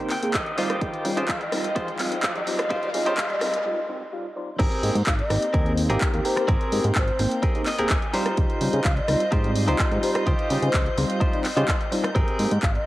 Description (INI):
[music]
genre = filtered disco house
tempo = 127 BPM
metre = 4/4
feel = straight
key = Ab major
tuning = A4 = 438 Hz
[part]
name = tine electric piano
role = accompaniment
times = 0.0-12.5 s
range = G3 to G5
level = -29 LUFS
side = equal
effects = medium stereo tremolo, phaser, vintage 12-bit sampler grit, sidechain pumping, low-pass filter, cassette tape
[part]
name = warm studio violin section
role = sustained chords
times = 0.0-12.9 s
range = C4 to G6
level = -33 LUFS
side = equal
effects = sidechain pumping, low-pass filter, cassette tape
[part]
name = riser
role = sound effects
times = 0.1-3.7 s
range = none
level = -38 LUFS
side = right 1 dB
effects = none
[part]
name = direct-recorded clean electric guitar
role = riff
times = 0.1-12.5 s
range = C4 to G5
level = -28 LUFS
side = equal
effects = sidechain pumping, low-pass filter, cassette tape
[part]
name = house drum kit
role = drums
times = 0.1-12.8 s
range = crash cymbal, handclaps, hi-hat, rim click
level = -29 LUFS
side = equal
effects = sidechain pumping on hats, cassette tape, sidechain pumping on cymbals
[part]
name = fat analog bass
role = bass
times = 0.2-12.8 s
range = Eb1 to Db3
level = -26 LUFS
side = equal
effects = sidechain pumping, high-pass filter, low-pass filter
[part]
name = electronic kick drum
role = drums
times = 0.3-12.7 s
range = none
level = -24 LUFS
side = equal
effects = cassette tape
[part]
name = breathy mellow concert flute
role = melody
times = 1.3-12.9 s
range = C5 to F5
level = -30 LUFS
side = equal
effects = vintage 12-bit sampler grit, sidechain pumping, low-pass filter, tape echo
[sound]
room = wet spring reverb, RT60 2.4 s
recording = home recording on cassette, high-pass filter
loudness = -21 LUFS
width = side -16 dB against mid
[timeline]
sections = 0.0-4.6 A section; 4.6-12.9 B section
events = build-up 0.0-4.6; clean electric guitar fill 0.0-0.8, 7.4-8.4; filter sweep 0.0-4.6; riser 0.1-3.7; break 3.7-4.6; drop 4.6-12.9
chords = 0.0 Abmaj9; 0.6 Dbmaj9#11; 4.6 Abmaj9; 8.1 Dbmaj9#11; 12.2 Abmaj9